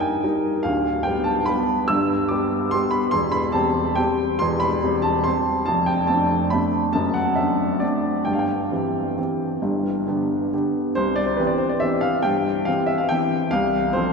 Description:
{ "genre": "classical, piano waltz", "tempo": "129-151 BPM", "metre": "3/4", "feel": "rubato", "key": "C major", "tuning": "A4 = 441 Hz", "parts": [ { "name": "warm upright piano", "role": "solo", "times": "0.0-14.1 s", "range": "D1 to E6", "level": "-19 LUFS", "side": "equal", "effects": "none" } ], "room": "wet cathedral reverb, RT60 4.5 s", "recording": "heard from further back in the room", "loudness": "-19 LUFS", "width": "side -4 dB against mid", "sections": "0.0-11.0 A section; 11.0-14.1 B section", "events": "none", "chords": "0.0 Eb/G; 0.6 G7/D; 3.1 C/E; 5.7 Dm7/F; 7.0 D7/F#; 8.3 C/G; 9.6 G; 11.0 C; 13.5 F/C" }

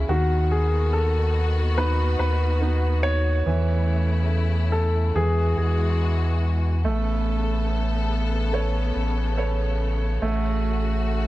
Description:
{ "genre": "pop", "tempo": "71 BPM", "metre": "4/4", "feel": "straight", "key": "A major", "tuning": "A4 = 441 Hz", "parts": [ { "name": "clear concert grand piano", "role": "accompaniment", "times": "0.0-11.3 s", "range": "D#3 to C#5", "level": "-28 LUFS", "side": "right 4 dB", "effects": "none" }, { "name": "clear studio string section", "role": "sustained chords", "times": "0.0-11.3 s", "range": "C#3 to A4", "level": "-31 LUFS", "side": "left 3 dB", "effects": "none" }, { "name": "warm sub bass", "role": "bass", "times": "0.0-11.3 s", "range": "A1 to E2", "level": "-22 LUFS", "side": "equal", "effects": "none" }, { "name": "warm grand piano", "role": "melody", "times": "0.1-6.4 s", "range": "F#4 to C#5", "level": "-27 LUFS", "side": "left 1 dB", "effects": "none" } ], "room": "small room ambience", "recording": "dark, warm production", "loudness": "-20 LUFS", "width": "side -16 dB against mid", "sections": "0.0-11.3 A section", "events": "none", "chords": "0.1 B/D#; 3.5 A/E; 5.2 Eadd9; 6.8 Aadd9; 10.2 F#m/A" }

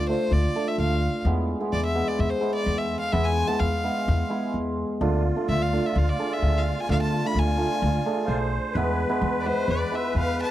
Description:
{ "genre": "klezmer", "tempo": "128 BPM", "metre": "4/4", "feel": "straight", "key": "D dorian sharp4", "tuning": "A4 = 440 Hz", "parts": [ { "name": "clear violin", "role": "melody", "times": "0.0-10.5 s", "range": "C5 to B5", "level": "-29 LUFS", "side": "left 2 dB", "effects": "none" }, { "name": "upright bass", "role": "bass", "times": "0.0-10.4 s", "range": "B1 to E2", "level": "-25 LUFS", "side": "equal", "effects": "none" }, { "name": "cimbalom", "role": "accompaniment", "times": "0.1-10.5 s", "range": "G#3 to G#4", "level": "-26 LUFS", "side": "right 2 dB", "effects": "none" }, { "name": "musette accordion", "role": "second line", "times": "5.0-10.5 s", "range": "F4 to C5", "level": "-30 LUFS", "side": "equal", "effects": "slapback echo" } ], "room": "small room ambience", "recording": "dry, close 1970s-style studio recording", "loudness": "-22 LUFS", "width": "side -13 dB against mid", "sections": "0.0-10.5 A section", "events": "none", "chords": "0.0 Dm; 1.2 E; 5.0 Dm; 8.8 E" }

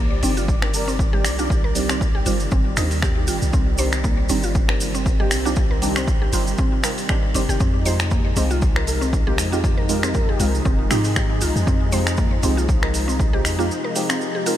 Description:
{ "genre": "afro house", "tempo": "118 BPM", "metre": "4/4", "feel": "swing 56% on 16ths", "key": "C minor", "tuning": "A4 = 440 Hz", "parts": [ { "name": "warm analog pad", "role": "sustained chords", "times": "0.0-14.6 s", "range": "C3 to D5", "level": "-28 LUFS", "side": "equal", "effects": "chorus, sidechain pumping" }, { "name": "mallet-like synth pluck", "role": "arpeggios", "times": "0.0-14.6 s", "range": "Bb3 to C5", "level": "-28 LUFS", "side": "equal", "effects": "chorus, sidechain pumping, ping-pong delay" }, { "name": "warm 808-style bass", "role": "bass", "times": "0.0-13.7 s", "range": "F1 to Ab2", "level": "-24 LUFS", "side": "equal", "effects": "sidechain pumping" }, { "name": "deep mellow chord stab", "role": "stabs", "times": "0.2-14.5 s", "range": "G3 to C5", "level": "-28 LUFS", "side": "right 2 dB", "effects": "chorus, phaser, vintage 12-bit sampler grit, sidechain pumping, ping-pong delay" }, { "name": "house drum kit", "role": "drums", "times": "0.2-14.6 s", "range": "finger snaps, hi-hat", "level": "-27 LUFS", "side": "equal", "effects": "none" }, { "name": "cabasa", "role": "percussion", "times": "0.2-14.6 s", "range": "none", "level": "-31 LUFS", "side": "right 3 dB", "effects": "none" }, { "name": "electronic kick drum", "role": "drums", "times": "0.5-13.3 s", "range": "none", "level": "-21 LUFS", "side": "equal", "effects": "none" }, { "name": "expressive synth lead", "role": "melody", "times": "0.7-3.4, 8.9-10.4 s", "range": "G4 to Bb4", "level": "-35 LUFS", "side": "left 1 dB", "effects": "ensemble chorus, ping-pong delay" } ], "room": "light reverb, digital ambience", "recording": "none", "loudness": "-17 LUFS", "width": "side -12 dB against mid", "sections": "0.0-14.6 A section", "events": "break 13.7-14.6", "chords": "0.0 Cmadd9; 7.6 Fm7" }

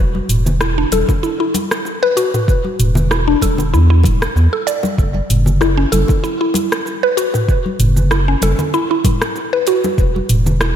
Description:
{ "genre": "organic downtempo", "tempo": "96 BPM", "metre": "4/4", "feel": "swing 54% on 16ths", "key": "unclear", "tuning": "A4 = 440 Hz", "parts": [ { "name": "round analog bass", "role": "bass", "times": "0.0-10.8 s", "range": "E1 to E2", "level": "-15 LUFS", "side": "equal", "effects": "sidechain pumping" }, { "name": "congas and bongos", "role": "percussion", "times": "0.1-10.6 s", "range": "none", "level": "-23 LUFS", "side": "left 2 dB", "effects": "none" }, { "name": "afro-pop drum kit", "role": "drums", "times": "0.3-10.7 s", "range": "cabasa, hi-hat, rim click, toms", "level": "-20 LUFS", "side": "right 1 dB", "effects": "none" }, { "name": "mallet-like synth pluck", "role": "arpeggios", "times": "0.6-10.7 s", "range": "C#4 to D5", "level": "-18 LUFS", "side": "equal", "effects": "chorus, phaser, diffuse ambient delay" }, { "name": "electronic kick drum", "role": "drums", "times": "1.1-10.1 s", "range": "none", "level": "-15 LUFS", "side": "equal", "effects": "none" } ], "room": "moderate lush hall reverb, RT60 2.4 s", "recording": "dreamy mix soaked in reverb", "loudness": "-13 LUFS", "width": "side -9 dB against mid", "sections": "0.0-10.8 A section", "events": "none", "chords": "0.0 E5; 5.0 F#7(no3); 10.0 E5" }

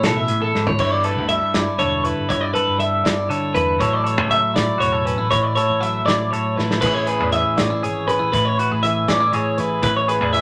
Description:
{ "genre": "math rock and midwest emo", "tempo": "80 BPM (dotted quarters)", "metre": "6/8", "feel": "straight", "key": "unclear", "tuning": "A4 = 441 Hz", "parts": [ { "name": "clean electric guitar", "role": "accompaniment", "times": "0.0-10.4 s", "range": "G2 to A4", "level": "-24 LUFS", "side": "equal", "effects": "none" }, { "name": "twelve-string electric guitar", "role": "arpeggios", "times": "0.0-10.4 s", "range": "A4 to E5", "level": "-22 LUFS", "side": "equal", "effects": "none" }, { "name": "loose indie drum kit", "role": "drums", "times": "0.0-10.4 s", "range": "crash cymbal, hi-hat, kick drum, snare drum, toms", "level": "-27 LUFS", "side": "equal", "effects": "none" }, { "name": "modern bright fingered electric bass", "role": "bass", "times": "0.2-10.4 s", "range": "E1 to A2", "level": "-30 LUFS", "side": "equal", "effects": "none" } ], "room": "wet studio reverb, RT60 0.6 s", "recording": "none", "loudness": "-19 LUFS", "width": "mono", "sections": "0.8-10.4 A section", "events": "drum fill 0.5, 6.6", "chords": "0.0 Amaj7; 0.8 G69; 3.8 F#m7; 6.8 Amaj7" }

